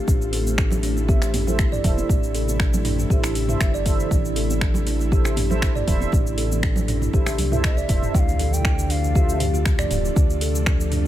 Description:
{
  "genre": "afro house",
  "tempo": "119 BPM",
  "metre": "4/4",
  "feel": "straight",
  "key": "D minor",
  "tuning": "A4 = 441 Hz",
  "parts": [
    { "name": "ethereal airy pad", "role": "sustained chords", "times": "0.0-11.1 s", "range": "C3 to E4", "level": "-30 LUFS", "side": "equal", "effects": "ensemble chorus, built-in reverb, sidechain pumping" },
    { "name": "kalimba", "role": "arpeggios", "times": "0.1-11.0 s", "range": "D4 to D5", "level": "-28 LUFS", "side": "equal", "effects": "sidechain pumping, digital delay" },
    { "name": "round analog bass", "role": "bass", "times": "0.1-11.1 s", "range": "D1 to D2", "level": "-24 LUFS", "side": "equal", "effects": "sidechain pumping" },
    { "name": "deep house drum kit", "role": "drums", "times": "0.1-11.1 s", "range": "cabasa, finger snaps, hi-hat, toms", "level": "-28 LUFS", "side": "equal", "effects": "none" },
    { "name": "electronic kick drum", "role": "drums", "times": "0.1-10.8 s", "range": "none", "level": "-20 LUFS", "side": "equal", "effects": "none" },
    { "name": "congas", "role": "percussion", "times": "0.1-8.0 s", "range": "none", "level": "-32 LUFS", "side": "right 3 dB", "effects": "none" },
    { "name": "mellow synth brass", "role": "stabs", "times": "1.1-9.4 s", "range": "E4 to E5", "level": "-32 LUFS", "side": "right 4 dB", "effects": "chorus, sidechain pumping, digital delay" },
    { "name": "hollow bansuri", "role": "melody", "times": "7.6-9.7 s", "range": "E5 to G5", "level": "-32 LUFS", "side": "left 4 dB", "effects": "digital delay" },
    { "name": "impact", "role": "sound effects", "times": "8.1-10.2 s", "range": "none", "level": "-31 LUFS", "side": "equal", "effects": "none" }
  ],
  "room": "little or no reverb",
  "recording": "none",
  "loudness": "-18 LUFS",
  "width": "side -13 dB against mid",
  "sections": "0.0-8.1 A section; 8.1-11.1 B section",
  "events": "drum fill 7.1-8.1; drop 8.1-11.1; impact 8.1-10.2",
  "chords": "0.1 Am; 8.1 Dm7"
}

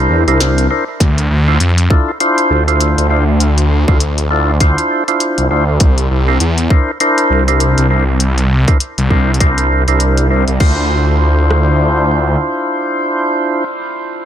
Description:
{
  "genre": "glitch hop",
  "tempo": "100 BPM",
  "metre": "4/4",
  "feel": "swing 58% on 16ths",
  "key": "D minor",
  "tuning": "A4 = 440 Hz",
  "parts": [
    { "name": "percussive tonewheel organ", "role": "stabs", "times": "0.0-13.6 s", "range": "D4 to C5", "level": "-15 LUFS", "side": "equal", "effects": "slow rotary speaker, sidechain pumping, low-pass filter, tape echo" },
    { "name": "phased detuned saw bass", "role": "bass", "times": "0.0-12.4 s", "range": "C2 to F2", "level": "-12 LUFS", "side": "equal", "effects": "phaser, tube saturation" },
    { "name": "glitchy drum kit", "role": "drums", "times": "0.3-10.7 s", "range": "crash cymbal, hi-hat, snare drum", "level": "-20 LUFS", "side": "left 2 dB", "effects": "tape echo" },
    { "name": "drum and bass drum kit", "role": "drums", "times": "1.0-11.7 s", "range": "kick drum, rim click", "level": "-11 LUFS", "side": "equal", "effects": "none" }
  ],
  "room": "little or no reverb",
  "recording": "echo-heavy mix",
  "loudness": "-11 LUFS",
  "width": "side -10 dB against mid",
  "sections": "0.0-10.6 A section; 10.6-13.0 B section",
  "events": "none",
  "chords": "0.0 C9; 1.0 Dm9; 5.8 C9; 10.6 Dm9"
}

